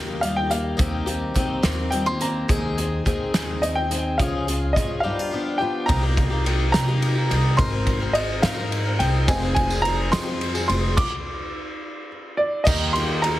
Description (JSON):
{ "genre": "indie folk with a building arrangement", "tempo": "71 BPM (dotted quarters)", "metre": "6/8", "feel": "straight", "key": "unclear", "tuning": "A4 = 440 Hz", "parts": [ { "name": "fingerpicked steel-string acoustic guitar", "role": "accompaniment", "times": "0.0-5.9 s", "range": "Eb2 to Ab4", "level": "-29 LUFS", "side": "left 1 dB", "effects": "none" }, { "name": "picked twelve-string acoustic guitar", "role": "accompaniment", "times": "0.0-13.4 s", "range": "F2 to Bb4", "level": "-29 LUFS", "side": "left 3 dB", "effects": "none" }, { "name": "upright bass", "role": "bass", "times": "0.0-13.4 s", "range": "F1 to C3", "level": "-25 LUFS", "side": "equal", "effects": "none" }, { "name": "clear upright piano", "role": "melody", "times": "0.2-13.4 s", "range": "D5 to D6", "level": "-25 LUFS", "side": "equal", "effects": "none" }, { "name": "loose indie drum kit", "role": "drums", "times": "0.2-13.4 s", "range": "crash cymbal, hi-hat, kick drum, ride cymbal, snare drum", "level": "-25 LUFS", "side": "equal", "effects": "none" }, { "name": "bright baby grand piano", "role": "accompaniment", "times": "9.3-13.4 s", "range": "F1 to Eb5", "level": "-32 LUFS", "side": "right 3 dB", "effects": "none" }, { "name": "tambourine", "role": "percussion", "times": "9.3-13.0 s", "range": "none", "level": "-36 LUFS", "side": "right 4 dB", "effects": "none" } ], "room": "light reverb, small room reverb", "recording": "heavily compressed radio sound", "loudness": "-20 LUFS", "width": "side -15 dB against mid", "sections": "0.0-5.9 A section; 5.9-12.7 B section", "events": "stop 11.0-12.7", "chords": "0.0 Eb; 0.8 Cm7/Eb; 2.5 Ab/Eb; 4.2 Db; 5.0 G7; 5.9 Cm7; 7.6 Abadd9; 9.3 Fm7; 11.0 N.C.; 12.7 Eb", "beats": "| 0.80 1.65 | 2.50 3.35 | 4.20 5.04 | 5.89 6.74 | 7.59 8.44 | 9.28 10.13 | 10.97 11.82 | 12.67" }